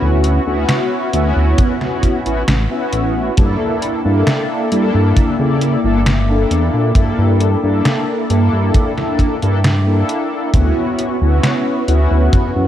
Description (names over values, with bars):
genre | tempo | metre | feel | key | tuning
vaporwave | 67 BPM | 4/4 | straight | unclear | A4 = 440 Hz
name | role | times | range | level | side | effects
mellow synth brass | accompaniment | 0.0-12.7 s | Bb3 to D5 | -17 LUFS | equal | lush chorus, tape echo
warbly tape-like pad | sustained chords | 0.0-12.7 s | Bb3 to D6 | -24 LUFS | left 2 dB | chorus, built-in reverb
chorused synth bass | bass | 0.0-12.7 s | G1 to C#3 | -15 LUFS | equal | none
detuned 8-bit digital drum machine | drums | 0.2-12.5 s | hi-hat, snare drum | -19 LUFS | equal | gated reverb
kick drum | drums | 1.6-12.5 s | none | -17 LUFS | equal | none
room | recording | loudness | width
light reverb, digital ambience | none | -13 LUFS | side -11 dB against mid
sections
0.0-12.7 A section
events
none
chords
0.0 Dmaj13; 3.4 Gm6; 10.5 Dmaj13